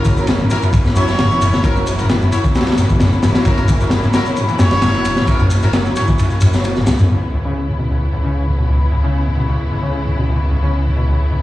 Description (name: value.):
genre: breakbeat, breaks.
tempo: 132 BPM.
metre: 4/4.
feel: straight.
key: C# dorian.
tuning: A4 = 444 Hz.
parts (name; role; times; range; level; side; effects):
rich studio string section; sustained chords; 0.0-11.4 s; C#3 to E4; -24 LUFS; left 1 dB; vintage 12-bit sampler grit, sidechain pumping.
clear horn section; stabs; 0.0-6.1 s; E4 to C#5; -22 LUFS; left 1 dB; dub echo.
dark detuned saw bass; bass; 0.0-11.4 s; E1 to F#2; -18 LUFS; equal; none.
crunchy breakbeat drum kit; drums; 0.0-7.0 s; kick drum, ride cymbal, snare drum; -16 LUFS; equal; none.
shaker; drums; 0.0-7.1 s; none; -33 LUFS; left 2 dB; none.
overdriven acid bass; riff; 0.1-11.3 s; C#2 to F#3; -18 LUFS; equal; ensemble chorus, cassette tape, dub echo.
room: light reverb.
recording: played on a big sound system in a bare room, large studio reverb, small room ambience.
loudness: -13 LUFS.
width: side -15 dB against mid.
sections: 0.0-7.1 A section; 7.1-11.4 B section.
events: kick drops out 6.2-7.1.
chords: 0.0 F#7; 7.1 C#m7.